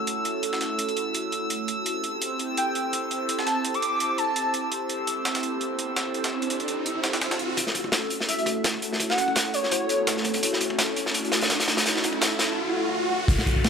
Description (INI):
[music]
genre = drum and bass, jungle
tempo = 168 BPM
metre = 4/4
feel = swing 55% on 16ths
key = F# phrygian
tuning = A4 = 440 Hz
[part]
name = airy breathy pad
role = sustained chords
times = 0.0-13.7 s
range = A3 to C5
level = -29 LUFS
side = right 1 dB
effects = chorus, phaser
[part]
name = drifting glass-harmonics texture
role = texture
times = 0.0-7.6 s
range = E6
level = -32 LUFS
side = left 1 dB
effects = chorus, built-in reverb
[part]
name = breakbeat sampler-style drum kit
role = drums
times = 0.1-13.7 s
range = hi-hat, snare drum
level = -29 LUFS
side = right 2 dB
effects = high-pass filter on hats, high-pass filter on snare
[part]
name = airy dreamy lead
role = melody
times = 2.6-4.5, 8.3-10.0 s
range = C#5 to D6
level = -28 LUFS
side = equal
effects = chorus, dub echo
[part]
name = riser, swell and downlifter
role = sound effects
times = 5.6-13.7 s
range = none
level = -31 LUFS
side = right 1 dB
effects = none
[part]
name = crunchy breakbeat drum kit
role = drums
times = 7.6-13.7 s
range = crash cymbal, hi-hat, kick drum, snare drum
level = -24 LUFS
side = left 1 dB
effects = high-pass filter on kick, high-pass filter on hats, high-pass filter on cymbals, high-pass filter on snare, high-pass filter on room
[part]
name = long sustained 808-style bass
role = bass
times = 13.3-13.4 s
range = F#1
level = -21 LUFS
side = equal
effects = tube saturation
[sound]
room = moderate echo chamber reverb, RT60 1.6 s, small room ambience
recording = none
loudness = -23 LUFS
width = side -6 dB against mid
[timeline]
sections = 0.0-7.6 A section; 7.6-13.3 B section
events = riser 5.6-7.6, 7.6-13.3; build-up 7.6-13.3; filter sweep on analog synth pad 7.6-13.3; break 12.6-13.3; swell 12.6-13.3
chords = 0.0 F#m7; 1.9 Am7; 7.6 F#m7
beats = 0.07 | 0.43 0.79 1.15 1.50 | 1.86 2.22 2.57 2.93 | 3.29 3.65 4.00 4.36 | 4.72 5.07 5.43 5.79 | 6.14 6.50 6.86 7.22 | 7.57 7.93 8.29 8.64 | 9.00 9.36 9.72 10.07 | 10.43 10.79 11.14 11.50 | 11.86 12.22 12.57 12.93 | 13.29 13.64